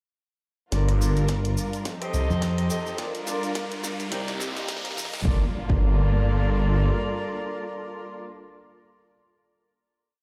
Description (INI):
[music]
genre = glitch hop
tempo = 106 BPM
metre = 4/4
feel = swing 57% on 16ths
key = G minor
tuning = A4 = 441 Hz
[part]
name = warm symphonic string section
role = sustained chords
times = 0.7-8.3 s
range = C3 to Bb4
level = -35 LUFS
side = equal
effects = sidechain pumping
[part]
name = warm horn section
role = stabs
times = 0.7-8.3 s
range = Eb4 to Eb5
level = -35 LUFS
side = equal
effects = sidechain pumping, delay
[part]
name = phased detuned saw bass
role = bass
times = 0.7-6.9 s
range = G1 to C2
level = -26 LUFS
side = equal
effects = phaser
[part]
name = electronic kick drum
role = drums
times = 0.7-5.9 s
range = none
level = -27 LUFS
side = equal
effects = high-pass filter on kick
[part]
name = pop drum kit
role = drums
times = 0.7-5.3 s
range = hi-hat, rim click, snare drum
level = -38 LUFS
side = equal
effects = high-pass filter on snare, high-pass filter on hats
[part]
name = cabasa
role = percussion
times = 0.7-5.2 s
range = none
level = -41 LUFS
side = equal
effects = none
[part]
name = riser and impact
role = sound effects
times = 2.6-9.0 s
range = none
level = -40 LUFS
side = equal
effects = none
[part]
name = fingered electric bass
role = bass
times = 2.3-5.2 s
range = Bb1 to F2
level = -27 LUFS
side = equal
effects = none
[sound]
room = light reverb, small room ambience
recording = played on a big sound system in a bare room, large studio reverb, high-pass filter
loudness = -25 LUFS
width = mono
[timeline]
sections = 0.7-5.3 build; 5.3-7.5 final chord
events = build-up 0.7-5.3; drum fill 0.7-5.3; filter sweep 0.7-5.3; riser 2.6-5.3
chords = 0.7 Gm7; 1.9 F7; 3.0 Gm7; 4.1 Cm7; 5.3 Gm7